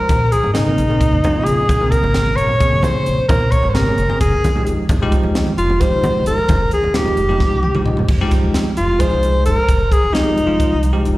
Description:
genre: electric jazz fusion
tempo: 263 BPM (eighths)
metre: 7/8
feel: straight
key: F minor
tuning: A4 = 437 Hz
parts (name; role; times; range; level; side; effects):
- breathy alto saxophone; melody; 0.0-11.0 s; Eb4 to Db5; -18 LUFS; equal; slapback echo
- upright bass; bass; 0.1-11.2 s; F1 to F2; -19 LUFS; equal; none
- crisp fusion drum kit; drums; 0.1-11.2 s; crash cymbal, hi-hat, kick drum, snare drum, toms; -19 LUFS; equal; none
- congas; percussion; 0.1-8.1 s; none; -24 LUFS; equal; slapback echo
- bell-like tine electric piano; accompaniment; 0.6-11.2 s; Db3 to G5; -21 LUFS; equal; medium stereo tremolo, slapback echo
room: light reverb, small room ambience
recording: live gig heard through the venue's PA, recital hall reverb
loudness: -13 LUFS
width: side -18 dB against mid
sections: 0.0-8.1 A section; 8.1-11.2 A section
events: drum fill 7.4-8.1; tine electric piano fill 7.4-8.1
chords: 0.1 Bbm9; 4.2 Fm9

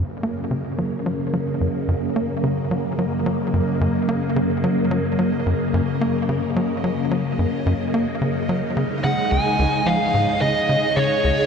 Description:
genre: ambient, sequencer-driven space music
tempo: 109 BPM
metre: 4/4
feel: straight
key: F# major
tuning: A4 = 440 Hz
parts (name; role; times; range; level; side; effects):
- phased string machine; sustained chords; 0.0-11.5 s; F#2 to D#4; -22 LUFS; left 1 dB; ensemble chorus, phaser
- tight sequencer bass; riff; 0.0-11.3 s; C#2 to A#3; -23 LUFS; equal; tape echo
- bubbling stepped-filter texture; texture; 0.4-11.5 s; D#5; -36 LUFS; right 6 dB; chorus, built-in reverb
- fuzz lead guitar; melody; 9.0-11.5 s; C#5 to G#5; -20 LUFS; equal; distortion, tape echo
room: wet cathedral reverb, RT60 5.8 s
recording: in a vast, echoing space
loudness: -19 LUFS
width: side -6 dB against mid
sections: 0.0-11.5 A section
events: fade-in on synth texture 0.0-11.5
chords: 0.0 F#; 8.8 C#sus2

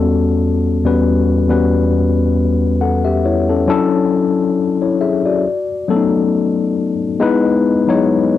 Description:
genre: R&B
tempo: 68 BPM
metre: 4/4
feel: swing 55% on 16ths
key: unclear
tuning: A4 = 439 Hz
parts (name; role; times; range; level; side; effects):
- tine electric piano; solo; 0.0-8.4 s; E2 to F#5; -13 LUFS; left 3 dB; overdrive, fast stereo tremolo
room: moderate small room reverb, RT60 0.5 s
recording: home recording on cassette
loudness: -13 LUFS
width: side -12 dB against mid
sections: 0.0-7.2 A section; 7.2-8.4 B section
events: none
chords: 0.0 A13/E; 3.7 Dmaj9; 5.4 B7; 7.2 Emaj7

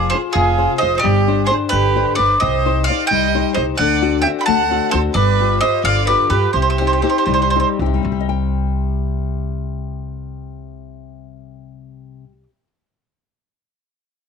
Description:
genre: italian folk, Italian serenade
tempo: 76-89 BPM (dotted quarters)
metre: 6/8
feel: straight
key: C harmonic minor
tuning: A4 = 444 Hz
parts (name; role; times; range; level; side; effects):
- bowl-back mandolin; melody; 0.0-7.7 s; Ab4 to B5; -18 LUFS; right 1 dB; none
- clear violin; second line; 0.0-7.7 s; F4 to G5; -21 LUFS; right 14 dB; none
- nylon-string guitar; accompaniment; 0.0-12.7 s; C3 to G5; -21 LUFS; left 13 dB; none
- upright bass; bass; 0.0-12.4 s; F1 to G2; -21 LUFS; right 1 dB; transformer saturation
room: light reverb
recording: 1960s-style stereo with parts hard left and right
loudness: -14 LUFS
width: side -6 dB against mid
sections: 0.0-8.0 A section; 8.0-11.2 B section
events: slowing down 5.2-8.0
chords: 0.0 Fm; 1.0 Gsus4; 2.4 Cm; 3.8 D7; 5.2 G7; 6.5 Cm; 8.0 C5

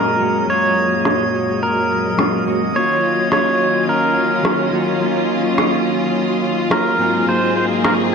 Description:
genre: sunset chillout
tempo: 106 BPM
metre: 4/4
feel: swing 56% on 16ths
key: unclear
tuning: A4 = 439 Hz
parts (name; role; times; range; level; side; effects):
- pedal steel guitar; melody; 0.0-7.9 s; Bb4 to Db5; -18 LUFS; equal; ping-pong delay
- mellow electric guitar; accompaniment; 0.0-8.1 s; Gb2 to Gb4; -21 LUFS; equal; auto-pan, ping-pong delay
- warm studio string section; sustained chords; 0.0-8.1 s; Bb2 to Ab4; -20 LUFS; equal; low-pass filter
- drifting glass-harmonics texture; texture; 0.0-8.1 s; Eb5 to Eb6; -28 LUFS; equal; chorus, built-in reverb
- electronic cabasa and rim click; drums; 0.2-8.0 s; none; -21 LUFS; right 1 dB; low-pass filter on perc, low-pass filter on snare, low-pass filter on room
room: moderate lush hall reverb, RT60 2.7 s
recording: none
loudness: -14 LUFS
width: side -6 dB against mid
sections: 0.0-8.1 A section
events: filter sweep on string section 0.0-8.1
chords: 0.0 Gbmaj9; 2.8 Ebm9; 7.0 Ab13

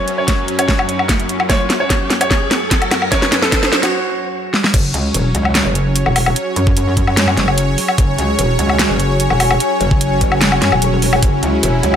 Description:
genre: heavy wobble dubstep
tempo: 148 BPM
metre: 4/4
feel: half-time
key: unclear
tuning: A4 = 440 Hz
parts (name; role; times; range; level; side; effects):
- bright concert grand piano; melody; 0.0-4.7 s; F#4 to C#5; -20 LUFS; right 1 dB; vintage 12-bit sampler grit, low-pass filter, dub echo
- supersaw pad; sustained chords; 0.0-12.0 s; F#2 to C#5; -22 LUFS; right 1 dB; sidechain pumping
- riser; sound effects; 0.0-3.9 s; none; -24 LUFS; right 1 dB; none
- deep dark ambient pad; texture; 0.2-12.0 s; F#4 to G#5; -23 LUFS; left 2 dB; chorus, built-in reverb, sidechain pumping
- dubstep drum kit; drums; 0.1-12.0 s; crash cymbal, hi-hat, snare drum, woodblock; -16 LUFS; left 1 dB; none
- electronic kick drum; drums; 0.3-11.3 s; none; -17 LUFS; equal; overdrive
- metallic wobble bass; bass; 4.7-12.0 s; E1 to F#2; -16 LUFS; equal; distortion, chorus, overdrive
room: light reverb, digital ambience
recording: none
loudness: -12 LUFS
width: side -8 dB against mid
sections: 0.0-4.7 A section; 4.7-12.0 B section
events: build-up 0.0-4.7; drum fill 0.0-3.9, 4.5; riser 0.0-3.9; filter sweep on grand piano 0.0-4.7; break 3.9-4.7; drop 4.7-12.0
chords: 0.0 F#5

